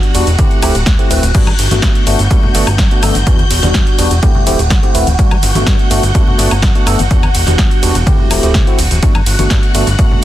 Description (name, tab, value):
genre	filtered disco house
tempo	125 BPM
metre	4/4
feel	straight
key	G major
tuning	A4 = 440 Hz
part	bright tine electric piano	accompaniment	0.0-10.2 s	G3 to B4	-18 LUFS	equal	medium stereo tremolo, phaser, vintage 12-bit sampler grit, sidechain pumping
part	phased string machine	sustained chords	0.0-10.2 s	F#4 to G6	-20 LUFS	equal	ensemble chorus, phaser, vintage 12-bit sampler grit, sidechain pumping
part	house drum kit	drums	0.0-10.1 s	cabasa, crash cymbal, hi-hat, ride cymbal, snare drum, woodblock	-18 LUFS	equal	sidechain pumping on hats, sidechain pumping on cymbals, sidechain pumping on perc
part	fat analog bass	bass	0.1-10.1 s	D1 to G2	-15 LUFS	equal	sidechain pumping
part	electronic kick drum	drums	0.4-10.1 s	none	-12 LUFS	equal	none
part	maracas and congas	percussion	1.3-10.2 s	none	-22 LUFS	left 2 dB	none
room	little or no reverb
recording	dense, heavily limited modern master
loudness	-9 LUFS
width	side -14 dB against mid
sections	0.0-10.2 A section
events	none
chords	0.4 D7sus4; 1.3 Gmaj9; 3.3 Em9; 4.2 D7sus4; 5.2 Gmaj9; 7.1 Em9; 8.1 D7sus4; 9.0 Gmaj9